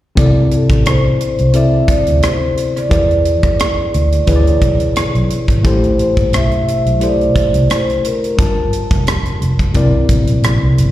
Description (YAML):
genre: lush 1970s-style soul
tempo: 88 BPM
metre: 4/4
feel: swing 54% on 16ths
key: C major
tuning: A4 = 440 Hz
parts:
  - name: tine electric piano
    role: accompaniment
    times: 0.2-10.9 s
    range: C3 to A5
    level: -17 LUFS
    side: left 2 dB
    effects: none
  - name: vintage muted fingered electric bass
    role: bass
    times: 0.2-10.9 s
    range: F1 to E2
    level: -14 LUFS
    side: equal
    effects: none
  - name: tight funk drum kit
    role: drums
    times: 0.2-10.9 s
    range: hi-hat, kick drum, rim click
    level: -17 LUFS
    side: equal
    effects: none
  - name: vibraphone with soft mallets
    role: melody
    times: 0.5-8.7 s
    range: A4 to E5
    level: -18 LUFS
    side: right 1 dB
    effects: slapback echo
room: studio reverb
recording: live gig heard through the venue's PA, recital hall reverb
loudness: -11 LUFS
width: side -14 dB against mid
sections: 0.2-10.9 A section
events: none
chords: 0.2 C69; 2.9 E7; 5.6 Am9; 8.4 Gm7; 9.8 C7